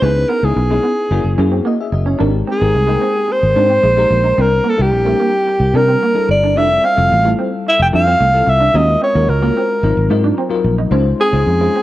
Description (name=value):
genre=pop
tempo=110 BPM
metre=4/4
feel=straight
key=unclear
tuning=A4 = 440 Hz
part: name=breathy alto saxophone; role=melody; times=0.0-11.8 s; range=G4 to G5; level=-14 LUFS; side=equal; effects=none
part: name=bell-like FM electric piano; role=accompaniment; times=0.0-11.8 s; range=Gb3 to G5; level=-20 LUFS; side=left 6 dB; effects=tremolo, wide subtle chorus, cassette tape
part: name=electric guitar through a small old amp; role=riff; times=0.0-11.8 s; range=Ab3 to Eb4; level=-22 LUFS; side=right 6 dB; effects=wide subtle chorus, cassette tape
part: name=fingered electric bass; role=bass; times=0.0-11.7 s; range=F1 to C3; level=-15 LUFS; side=equal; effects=none
room=light reverb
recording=home recording on cassette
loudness=-12 LUFS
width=side -15 dB against mid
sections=0.0-11.8 A section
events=none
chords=0.0 Dbm7; 1.1 F#9; 2.2 Abmaj9; 4.4 C7; 6.6 Fmaj9; 8.7 Ebm11; 9.8 Ab13; 10.9 Dbmaj9